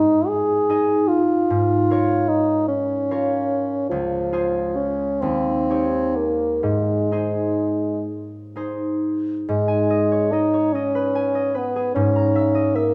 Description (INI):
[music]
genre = classical, romantic duo for bassoon and harp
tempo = 41-51 BPM (dotted quarters)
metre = 6/8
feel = rubato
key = Ab major, G# minor from 9.5 s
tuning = A4 = 441 Hz
[part]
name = dark bassoon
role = melody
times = 0.0-12.9 s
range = F3 to Ab4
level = -22 LUFS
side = equal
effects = none
[part]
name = concert harp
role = accompaniment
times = 0.0-12.9 s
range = Db2 to A#5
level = -26 LUFS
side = equal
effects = none
[sound]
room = wet recital hall reverb, RT60 1.3 s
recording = none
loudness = -21 LUFS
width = mono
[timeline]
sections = 0.0-9.5 A section; 9.5-12.9 B section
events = none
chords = 0.0 Ab5; 1.5 Bbm7/Ab; 3.9 Dbmaj7; 5.2 Eb7; 6.6 Ab; 9.5 G#m; 12.0 A#m7b5/G#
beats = 0.29 | 1.50 2.70 | 3.92 5.23 | 6.63 8.07 | 9.49 10.75 | 11.97